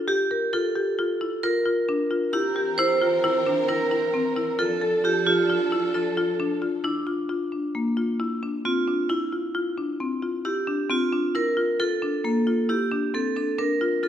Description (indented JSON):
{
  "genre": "contemporary instrumental, chamber music in an uneven meter",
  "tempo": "133 BPM",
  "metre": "5/4",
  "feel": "straight",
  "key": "Bb lydian",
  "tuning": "A4 = 440 Hz",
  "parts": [
    { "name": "vibraphone with hard mallets", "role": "second line", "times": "0.0-14.1 s", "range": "D4 to C5", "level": "-25 LUFS", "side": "right 3 dB", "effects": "none" },
    { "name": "marimba with medium hard mallets", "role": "arpeggios", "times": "0.0-14.1 s", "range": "Bb3 to Bb4", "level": "-25 LUFS", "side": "left 3 dB", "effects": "none" },
    { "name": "dark studio string section", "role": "sustained chords", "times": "2.3-6.8 s", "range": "E3 to Bb4", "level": "-31 LUFS", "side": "right 1 dB", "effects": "none" }
  ],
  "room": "moderate recital hall reverb, RT60 1.3 s",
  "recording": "none",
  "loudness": "-22 LUFS",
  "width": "side -10 dB against mid",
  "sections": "0.0-6.8 A section; 6.8-14.1 B section",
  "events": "none",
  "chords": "0.1 Gm; 2.3 C7; 4.6 F6; 6.8 Bb; 9.1 F5; 11.3 Bb"
}